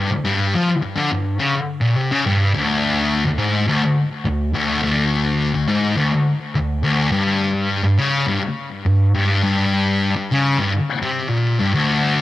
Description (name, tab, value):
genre	rock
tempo	105 BPM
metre	4/4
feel	straight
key	unclear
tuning	A4 = 440 Hz
part	thick fuzz guitar	solo	0.0-12.2 s	D2 to F3	-16 LUFS	left 1 dB	distortion, cassette tape, analog delay
room	little or no reverb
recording	home recording on cassette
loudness	-16 LUFS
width	side -15 dB against mid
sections	0.0-2.5 A section; 2.5-12.2 B section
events	none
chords	none